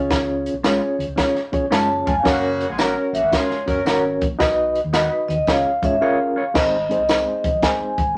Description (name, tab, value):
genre	uptempo 1960s-style soul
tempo	112 BPM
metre	4/4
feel	swing 66% on 8ths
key	unclear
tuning	A4 = 439 Hz
part	reed electric piano	accompaniment	0.0-8.2 s	Ab3 to D#5	-24 LUFS	equal	overdrive, fast tremolo
part	hollow-body short-scale fingered electric bass	bass	0.0-8.1 s	E#1 to G#2	-33 LUFS	equal	none
part	compact cocktail drum kit	drums	0.1-8.1 s	crash cymbal, hi-hat, kick drum, snare drum	-25 LUFS	equal	none
part	tambourine	percussion	0.1-7.8 s	none	-41 LUFS	equal	none
part	clean electric guitar	stabs	0.6-6.4 s	G#3 to C#5	-28 LUFS	equal	none
part	vibraphone with soft mallets	melody	1.7-8.2 s	C#5 to A5	-23 LUFS	equal	none
part	clear horn section	second line	2.2-3.8 s	C#3 to A#4	-31 LUFS	equal	none
room	moderate studio reverb, RT60 0.6 s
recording	none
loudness	-20 LUFS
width	mono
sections	0.0-6.5 A section; 6.5-8.2 B section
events	vibraphone solo 0.0-6.5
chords	0.0 C#; 2.3 F#; 4.4 B; 5.5 C#; 6.5 Ab